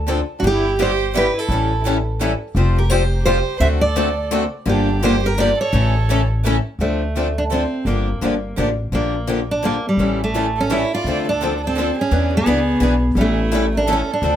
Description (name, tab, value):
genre	acoustic string swing (jazz manouche)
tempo	169 BPM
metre	3/4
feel	swing 62% on 8ths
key	D minor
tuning	A4 = 439 Hz
part	upright bass	bass	0.0-14.4 s	F1 to E2	-20 LUFS	equal	none
part	picked acoustic archtop guitar	accompaniment	0.1-14.4 s	C#3 to C5	-22 LUFS	left 5 dB	none
part	picked swing-style acoustic guitar	accompaniment	0.1-14.4 s	D3 to C5	-27 LUFS	right 4 dB	none
part	picked steel-string acoustic guitar	melody	0.4-14.4 s	G3 to E5	-21 LUFS	right 1 dB	tape echo
part	warm violin	second line	0.4-6.3, 10.6-14.4 s	D4 to D5	-26 LUFS	right 6 dB	none
room	light reverb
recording	none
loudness	-16 LUFS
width	side -10 dB against mid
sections	0.0-6.8 A section; 6.8-14.4 B section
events	none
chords	0.4 G6; 1.5 A7; 2.5 Fsus2; 3.6 D7; 4.7 Gm7; 5.7 A; 6.8 Dm7; 7.9 Gm7; 8.9 Bb6; 10.0 A7; 11.1 Dm7; 12.1 E7; 13.2 A7